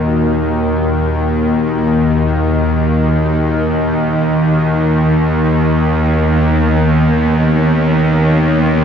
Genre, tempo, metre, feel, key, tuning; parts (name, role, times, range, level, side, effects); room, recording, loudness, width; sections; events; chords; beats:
dark ambient drone; free time; Eb minor; A4 = 442 Hz
dark analog pad; sustained chords; 0.0-8.8 s; D#3 to Eb5; -20 LUFS; equal; chorus
dark detuned synth bell; arpeggios; 0.0-5.1 s; barely audible
bowed-like drone; drone; 0.0-8.8 s; Eb2 to Eb3; -12 LUFS; equal; built-in reverb
wet cathedral reverb, RT60 5.6 s; in a vast, echoing space, nothing above 7.7 kHz; -11 LUFS; side -7 dB against mid
0.0-8.8 A section
0.0 Ebm; 5.1 Badd9/D#
free time